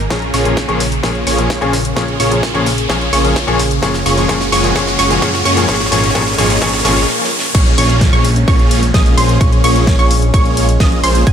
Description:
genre	EDM, festival progressive house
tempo	129 BPM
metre	4/4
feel	straight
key	Bb minor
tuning	A4 = 440 Hz
part	lush unison pad	sustained chords	0.0-11.3 s	Bb2 to Ab4	-22 LUFS	equal	chorus, phaser, sidechain pumping
part	fat analog bass	bass	0.0-11.3 s	Gb1 to Gb2	-17 LUFS	equal	sidechain pumping
part	riser, swell and downlifter	sound effects	0.0-11.3 s	none	-22 LUFS	right 1 dB	none
part	bright grand piano	accompaniment	0.1-6.9 s	Bb2 to Ab4	-20 LUFS	left 4 dB	sidechain pumping, digital delay
part	wide unison pluck	arpeggios	0.1-11.3 s	Ab5 to Eb6	-20 LUFS	right 1 dB	sidechain pumping, digital delay
part	supersaw chords	riff	0.1-11.3 s	Bb3 to Eb5	-18 LUFS	equal	sidechain pumping, low-pass filter, digital delay
part	big-room dance drum kit	drums	0.1-11.3 s	crash cymbal, hi-hat, ride cymbal, snare drum	-21 LUFS	left 1 dB	high-pass filter on snare, high-pass filter on hats, high-pass filter on cymbals
part	electronic kick drum	drums	0.1-11.3 s	none	-14 LUFS	equal	overdrive, high-pass filter on kick
room	light reverb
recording	none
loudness	-10 LUFS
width	side -8 dB against mid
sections	0.0-7.5 A section; 7.5-11.3 B section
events	build-up 0.0-7.5; drum fill 0.0-7.1, 7.1-7.5; riser 0.0-7.5; filter sweep on supersaw synth 0.0-7.5; filter sweep on analog synth pad 0.0-7.5; swell 6.6-7.5; stop 7.1-7.5; drop 7.5-11.3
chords	0.1 Bbm7; 3.8 Gbsus2; 5.7 Absus2; 7.5 Bbm7

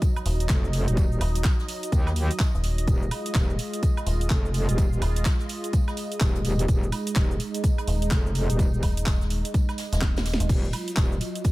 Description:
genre	bass house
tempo	126 BPM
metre	4/4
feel	swing 61% on 16ths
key	unclear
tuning	A4 = 440 Hz
part	sweeping resonant pad	sustained chords	0.0-11.5 s	Gb3 to Eb5	-33 LUFS	right 2 dB	wide subtle chorus, sidechain pumping
part	electronic kick drum	drums	0.0-11.5 s	none	-23 LUFS	equal	none
part	house drum kit	drums	0.0-11.5 s	crash cymbal, handclaps, hi-hat, shaker, snare drum, woodblock	-33 LUFS	right 1 dB	none
part	jazz brush drum kit	drums	0.0-11.5 s	hi-hat, snare drum, tambourine	-44 LUFS	right 2 dB	high-pass filter on hats, high-pass filter on snare, high-pass filter on perc, high-pass filter on room
part	metallic FM bass	bass	0.3-10.5 s	Eb1	-25 LUFS	equal	tube saturation, sidechain pumping
part	metallic wobble bass	bass	0.5-11.2 s	Eb1 to Eb2	-25 LUFS	equal	chorus, overdrive, sidechain pumping
room	little or no reverb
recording	none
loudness	-22 LUFS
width	side -19 dB against mid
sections	0.0-11.5 A section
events	drum fill 10.0-10.5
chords	0.0 Ebmadd9; 2.9 Fm7/Eb; 10.5 Ebmadd9

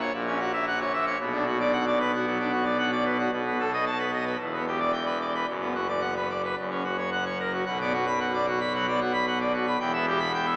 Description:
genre	classical, organ toccata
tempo	112 BPM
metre	4/4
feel	straight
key	B minor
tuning	A4 = 440 Hz
part	pipe organ, full organ	solo	0.0-10.6 s	E1 to B5	-24 LUFS	equal	none
room	wet cathedral reverb, RT60 4.6 s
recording	small speaker sound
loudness	-24 LUFS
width	side -26 dB against mid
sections	0.0-7.7 A section; 7.7-10.6 B section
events	none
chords	0.0 F#7/A#; 1.2 Bm; 3.3 B7; 4.4 Em7; 5.5 Bm/F#; 6.6 F#; 7.7 Bm; 9.8 Em

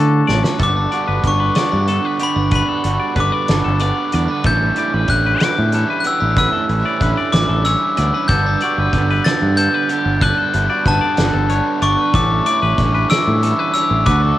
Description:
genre	math rock and midwest emo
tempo	62 BPM (dotted quarters)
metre	6/8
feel	straight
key	unclear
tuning	A4 = 440 Hz
part	glockenspiel with brass mallets	melody	0.0-14.4 s	A5 to A6	-18 LUFS	left 3 dB	none
part	electric guitar through a small old amp	accompaniment	0.0-14.4 s	D2 to F#4	-24 LUFS	right 7 dB	none
part	twangy electric guitar	arpeggios	0.0-14.4 s	G4 to D6	-25 LUFS	left 6 dB	none
part	growling fingered electric bass	bass	0.0-14.3 s	G1 to D3	-18 LUFS	equal	overdrive
part	loose indie drum kit	drums	0.3-14.2 s	hi-hat, kick drum, snare drum	-21 LUFS	equal	cassette tape
part	crunchy overdriven guitar	riff	0.6-14.4 s	D3 to F#4	-25 LUFS	right 6 dB	none
room	little or no reverb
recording	home recording on cassette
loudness	-14 LUFS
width	side -14 dB against mid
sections	0.6-14.4 A section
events	drum fill 0.3-0.6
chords	0.0 Dmaj7; 0.6 Gmaj9; 4.5 A7sus4; 8.3 Gmaj9; 12.1 A7sus4

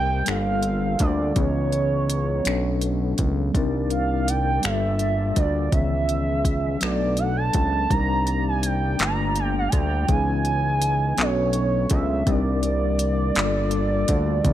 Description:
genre	slow six-eight R&B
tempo	55 BPM (dotted quarters)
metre	6/8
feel	straight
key	unclear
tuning	A4 = 442 Hz
part	gliding portamento lead	melody	0.0-14.5 s	Db5 to Bb5	-26 LUFS	right 4 dB	chorus
part	mellow tine electric piano	accompaniment	0.0-14.5 s	Db3 to Bb4	-27 LUFS	left 3 dB	medium stereo tremolo
part	tonewheel organ	sustained chords	0.0-14.5 s	B2 to Bb5	-34 LUFS	equal	overdrive, chorus vibrato, slow rotary speaker
part	fat analog bass	bass	0.0-14.5 s	G1 to D2	-24 LUFS	equal	none
part	smooth R&B drum kit	drums	0.3-14.5 s	finger snaps, handclaps, hi-hat, kick drum	-24 LUFS	equal	none
room	light reverb, digital ambience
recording	none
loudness	-20 LUFS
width	side -12 dB against mid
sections	0.0-14.5 A section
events	none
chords	0.3 Gm9; 1.4 Dbm9; 2.5 Bm9; 3.5 Cm9; 4.6 Gm9; 5.7 Dbm9; 6.8 Bm9; 7.9 Cm9; 9.0 Gm9; 10.1 Dbm9; 11.2 Bm9; 12.3 Cm9; 13.4 Gm9

